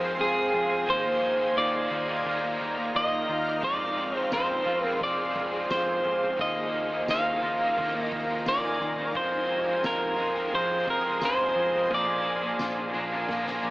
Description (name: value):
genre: dream pop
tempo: 87 BPM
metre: 4/4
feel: straight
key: unclear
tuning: A4 = 440 Hz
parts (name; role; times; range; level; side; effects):
- electric guitar at the edge of break-up; melody; 0.0-13.7 s; Ab4 to F5; -27 LUFS; equal; dub echo
- crunchy overdriven guitar; accompaniment; 0.0-13.7 s; F2 to F4; -34 LUFS; right 1 dB; harmonic tremolo, analog chorus, dub echo
- shimmering ambient pad; sustained chords; 0.0-13.7 s; Eb4 to D6; -34 LUFS; equal; chorus, built-in reverb
- clean electric guitar; arpeggios; 0.0-13.7 s; Eb3 to F4; -34 LUFS; left 1 dB; wide subtle chorus, dub echo
- vintage muted picked electric bass; bass; 0.0-13.7 s; Bb1 to F2; -42 LUFS; equal; none
- backwards swelling texture; texture; 0.0-13.7 s; D5 to Eb7; -38 LUFS; equal; built-in reverb, dub echo
- soft-mallet drum kit; drums; 3.6-13.6 s; kick drum, ride cymbal, snare drum, tambourine; -40 LUFS; equal; none
room: wet spring reverb, RT60 2.6 s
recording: echo-heavy mix, AM radio sound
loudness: -24 LUFS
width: side -20 dB against mid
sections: 0.0-13.7 A section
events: drum fill 13.3-13.7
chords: 0.0 Fm; 0.9 Ebsus2; 3.6 Fm; 6.4 Ebsus2; 9.2 Fm; 11.9 Bb